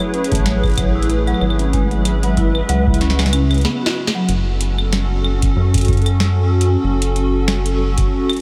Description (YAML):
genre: IDM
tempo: 94 BPM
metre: 4/4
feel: swing 56% on 16ths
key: F# minor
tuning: A4 = 438 Hz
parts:
  - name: hollow soft pad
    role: sustained chords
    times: 0.0-8.4 s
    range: C#3 to B5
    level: -24 LUFS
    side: equal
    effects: ensemble chorus, sidechain pumping
  - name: vibraphone with soft mallets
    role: arpeggios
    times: 0.0-4.3 s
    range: F#3 to F#4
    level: -25 LUFS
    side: equal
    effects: vintage 12-bit sampler grit, delay
  - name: booming analog drum machine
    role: drums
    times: 0.0-8.4 s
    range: claves, hi-hat, snare drum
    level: -26 LUFS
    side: equal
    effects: none
  - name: rubbery square bass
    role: bass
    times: 0.3-8.0 s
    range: F#1 to F#2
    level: -20 LUFS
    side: equal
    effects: none
  - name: electronic kick drum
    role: drums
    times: 0.3-8.1 s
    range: none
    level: -22 LUFS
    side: equal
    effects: none
room: moderate huge ambient reverb, RT60 7.7 s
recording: dreamy mix soaked in reverb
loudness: -17 LUFS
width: mono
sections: 0.0-4.3 A section; 4.3-8.4 B section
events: break 3.6-4.3; drum fill 3.6-4.3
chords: 0.0 Amaj7; 1.7 E/G#; 3.0 C#m7; 4.3 F#m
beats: 0.46 1.09 | 1.73 2.37 3.01 3.65 | 4.29 4.92 5.56 6.20 | 6.84 7.48 8.12